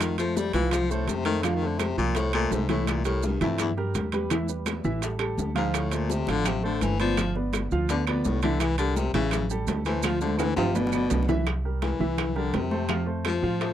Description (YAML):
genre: Afro-Cuban jazz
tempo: 168 BPM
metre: 4/4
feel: straight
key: C major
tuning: A4 = 439 Hz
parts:
  - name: bright baritone saxophone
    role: second line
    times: 0.0-13.7 s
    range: E2 to G3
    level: -29 LUFS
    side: left 6 dB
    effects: none
  - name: warm baby grand piano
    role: accompaniment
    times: 0.0-13.7 s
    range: E3 to F5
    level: -29 LUFS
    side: right 2 dB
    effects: none
  - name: upright bass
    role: bass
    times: 0.0-13.7 s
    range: G1 to A2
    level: -29 LUFS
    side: right 1 dB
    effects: none
  - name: bongos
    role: percussion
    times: 0.0-13.7 s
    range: none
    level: -37 LUFS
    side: left 7 dB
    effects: none
  - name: claves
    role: percussion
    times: 0.0-13.4 s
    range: none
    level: -36 LUFS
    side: right 22 dB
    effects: none
  - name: congas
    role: percussion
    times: 0.0-13.7 s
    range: none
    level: -34 LUFS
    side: left 1 dB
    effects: none
  - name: maracas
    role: percussion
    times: 0.0-11.5 s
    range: none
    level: -40 LUFS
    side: right 18 dB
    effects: none
  - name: timbales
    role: percussion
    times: 0.0-13.7 s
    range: none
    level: -34 LUFS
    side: right 10 dB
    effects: none
room: little or no reverb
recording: dry, close 1970s-style studio recording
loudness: -24 LUFS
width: side -11 dB against mid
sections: 0.0-11.5 A section; 11.5-13.7 A section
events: baritone saxophone solo 0.0-13.7; drum fill 10.0-11.5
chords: 0.0 F; 2.9 C7; 4.3 Em; 5.0 Dmadd11/A; 5.7 Dm7; 7.2 G7; 8.6 C7; 9.3 A5; 10.0 Dm7; 10.8 G6; 11.5 C7; 12.9 F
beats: | 0.01 0.37 0.73 1.08 | 1.44 1.80 2.16 2.52 | 2.88 3.23 3.59 3.95 | 4.31 4.67 5.03 5.39 | 5.74 6.10 6.46 6.82 | 7.18 7.54 7.89 8.25 | 8.61 8.97 9.33 9.68 | 10.04 10.40 10.76 11.12 | 11.47 11.83 12.19 12.55 | 12.90 13.26 13.62